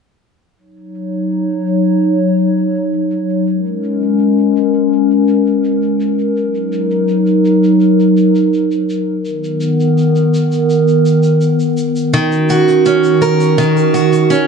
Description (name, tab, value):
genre	folktronica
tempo	83 BPM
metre	4/4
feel	straight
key	Eb minor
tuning	A4 = 442 Hz
part	warbly tape-like pad	sustained chords	0.9-14.5 s	D#3 to Db5	-12 LUFS	left 1 dB	chorus, built-in reverb
part	shaker	drums	0.6-14.5 s	none	-37 LUFS	left 1 dB	low-pass filter on perc, low-pass filter on room
part	picked steel-string acoustic guitar	arpeggios	12.1-14.5 s	Eb3 to Bb4	-12 LUFS	right 4 dB	digital delay
room	moderate studio reverb, RT60 0.5 s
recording	nothing above 10.8 kHz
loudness	-11 LUFS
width	side -5 dB against mid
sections	0.6-14.5 A section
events	none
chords	0.6 Ebm7; 3.5 Bbm7; 6.4 Gb6; 9.2 Bmaj7; 12.1 Ebm7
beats	| 0.57 1.29 2.02 2.74 | 3.46 4.19 4.91 5.63 | 6.35 7.08 7.80 8.52 | 9.25 9.97 10.69 11.41 | 12.14 12.86 13.58 14.31